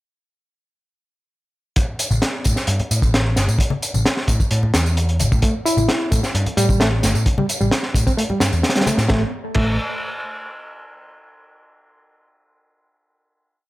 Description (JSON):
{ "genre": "breakbeat, breaks", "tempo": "131 BPM", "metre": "4/4", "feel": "straight", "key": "unclear", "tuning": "A4 = 440 Hz", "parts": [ { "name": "crunchy breakbeat drum kit", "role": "drums", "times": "1.8-9.6 s", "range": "crash cymbal, hi-hat, kick drum, snare drum", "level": "-20 LUFS", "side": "equal", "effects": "none" }, { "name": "tambourine", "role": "drums", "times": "1.8-9.1 s", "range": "none", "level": "-28 LUFS", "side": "equal", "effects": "none" }, { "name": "picked electric bass", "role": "bass", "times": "2.1-9.8 s", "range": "G1 to A2", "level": "-19 LUFS", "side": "equal", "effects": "none" }, { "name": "congas", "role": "percussion", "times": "2.1-9.0 s", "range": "none", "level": "-24 LUFS", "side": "left 3 dB", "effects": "none" }, { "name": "barky reed electric piano", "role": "riff", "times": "5.4-9.8 s", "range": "G3 to E4", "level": "-22 LUFS", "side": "equal", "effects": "medium tremolo, overdrive, digital delay" } ], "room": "small room ambience", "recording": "none", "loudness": "-16 LUFS", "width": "side -18 dB against mid", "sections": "1.8-9.1 groove; 9.1-10.9 final note", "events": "none", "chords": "1.8 A5; 9.1 N.C." }